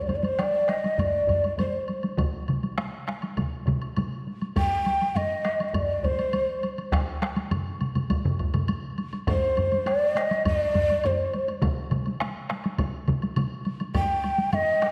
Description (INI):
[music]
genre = japanese traditional, taiko drum ensemble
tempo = 102 BPM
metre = 4/4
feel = straight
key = unclear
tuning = A4 = 441 Hz
[part]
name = breathy mellow shakuhachi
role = melody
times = 0.0-14.9 s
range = C5 to G5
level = -27 LUFS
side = equal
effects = none
[part]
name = taiko ensemble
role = percussion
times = 0.1-14.9 s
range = none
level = -34 LUFS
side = equal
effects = none
[part]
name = taiko ensemble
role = percussion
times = 0.1-14.9 s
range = none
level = -34 LUFS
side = equal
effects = none
[part]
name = woodblock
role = percussion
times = 0.1-14.9 s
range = none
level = -43 LUFS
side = equal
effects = none
[part]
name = taiko ensemble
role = percussion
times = 1.0-14.1 s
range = none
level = -33 LUFS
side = equal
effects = none
[part]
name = taiko ensemble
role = percussion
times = 2.2-13.5 s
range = none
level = -32 LUFS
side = equal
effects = none
[sound]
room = wet scoring stage reverb, RT60 1.8 s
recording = none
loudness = -26 LUFS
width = mono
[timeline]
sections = 0.0-14.9 A section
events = speeding up 0.0-14.9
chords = none